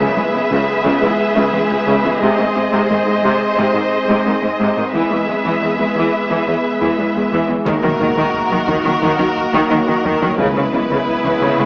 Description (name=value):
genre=cinematic, hybrid orchestral and electronic film score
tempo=88 BPM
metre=4/4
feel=straight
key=Eb phrygian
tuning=A4 = 440 Hz
part: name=dark symphonic violin section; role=second line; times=0.0-11.7 s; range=Fb4 to Fb5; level=-20 LUFS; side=equal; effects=none
part: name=warm symphonic viola section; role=accompaniment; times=0.0-11.7 s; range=C3 to Ab4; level=-19 LUFS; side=equal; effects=none
part: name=glassy FM pad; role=sustained chords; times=0.0-11.7 s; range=Gb3 to Fb5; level=-22 LUFS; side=equal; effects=ensemble chorus, built-in reverb
part: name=thumb-piano-like synth pluck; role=arpeggios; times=0.0-11.7 s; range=Db3 to Ab4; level=-26 LUFS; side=equal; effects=none
part: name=warm symphonic cello section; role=bass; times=0.0-11.7 s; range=Db2 to Eb3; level=-20 LUFS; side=equal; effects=none
part: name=warm symphonic violin section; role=melody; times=7.7-11.7 s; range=Bb4 to Cb5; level=-22 LUFS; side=left 1 dB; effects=none
part: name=mellow French horn section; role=sustained chords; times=7.7-11.7 s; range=Bb3 to Gb4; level=-23 LUFS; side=equal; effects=none
part: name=rubbery square bass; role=riff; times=7.7-11.7 s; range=Db2 to Eb3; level=-31 LUFS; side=equal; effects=none
part: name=warm symphonic double bass section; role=bass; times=7.7-11.5 s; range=Db2 to Eb2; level=-25 LUFS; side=equal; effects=none
part: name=taiko ensemble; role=drums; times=7.7-11.7 s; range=none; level=-32 LUFS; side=equal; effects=none
part: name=impact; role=sound effects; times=7.7-10.4 s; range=none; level=-31 LUFS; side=equal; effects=none
room=moderate scoring stage reverb, RT60 2.0 s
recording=small speaker sound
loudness=-13 LUFS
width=side -29 dB against mid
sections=0.0-7.7 A section; 7.7-11.7 B section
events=impact 7.7-10.4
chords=0.0 Dbm7; 2.2 Ab; 4.9 E; 7.7 Ebm; 10.4 Dbm7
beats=0.17 0.85 1.53 | 2.21 2.89 3.57 4.26 | 4.94 5.62 6.30 6.98 | 7.67 8.35 9.03 9.71 | 10.39 11.07